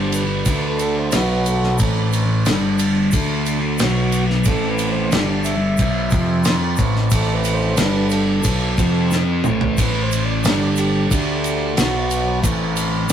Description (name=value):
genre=psychedelic rock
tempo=90 BPM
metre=4/4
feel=straight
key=A minor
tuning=A4 = 440 Hz
part: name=overdriven combo organ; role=sustained chords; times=0.0-13.1 s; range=C3 to E5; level=-22 LUFS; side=right 2 dB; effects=none
part: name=thick fuzz guitar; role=riff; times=0.0-13.1 s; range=G2 to F4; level=-21 LUFS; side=left 1 dB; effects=distortion, phaser
part: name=growling picked electric bass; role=bass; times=0.0-13.1 s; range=G1 to F2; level=-24 LUFS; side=left 1 dB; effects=overdrive
part: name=damped 70s drum kit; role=drums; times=0.1-13.1 s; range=kick drum, ride cymbal, snare drum, toms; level=-21 LUFS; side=equal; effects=none
part: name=egg shaker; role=percussion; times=0.1-13.1 s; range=none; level=-33 LUFS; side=left 2 dB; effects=none
room=wet booth ambience, RT60 0.2 s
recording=rough rehearsal-room recording, warm saturation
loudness=-16 LUFS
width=side -9 dB against mid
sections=0.0-13.1 A section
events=transistor combo organ solo 0.0-13.1; drum fill 9.1-9.8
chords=0.5 D5; 1.1 B5; 1.8 Am; 2.5 G5; 3.1 D5; 3.8 B5; 4.5 Am; 5.1 G5; 5.8 Bsus4; 6.1 F5; 6.8 Am; 7.8 G5; 8.5 F#madd11/B; 8.8 F5; 9.4 Am; 10.4 G5; 11.1 D5; 11.8 B5; 12.4 Am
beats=0.47 1.13 | 1.80 2.46 3.13 3.79 | 4.46 5.13 5.79 6.46 | 7.12 7.79 8.45 9.12 | 9.78 10.44 11.11 11.77 | 12.43 13.10